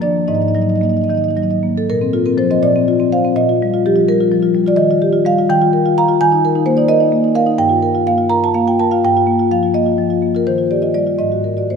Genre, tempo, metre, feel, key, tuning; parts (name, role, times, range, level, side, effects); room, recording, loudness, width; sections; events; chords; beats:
classical, contemporary piece for solo marimba; 74-88 BPM (dotted quarters); 6/8; rubato; Bb major; A4 = 440 Hz
marimba with soft mallets; solo; 0.0-11.8 s; G2 to Bb5; -12 LUFS; equal
wet church reverb, RT60 3.1 s; -12 LUFS; side -6 dB against mid
0.0-1.9 A section; 1.9-11.8 B section
0.3 Absus2; 1.9 Bbsus2; 3.4 F11/Bb; 4.8 Ebadd9; 5.5 Gm7/Eb; 6.2 Bb7sus4/Eb; 7.6 Gm7; 10.5 Ebadd9; 11.2 Absus2
| 0.28 1.08 | 1.88 2.63 | 3.37 4.08 | 4.79 5.50 | 6.21 6.90 | 7.59 8.32 | 9.04 9.75 | 10.46 11.19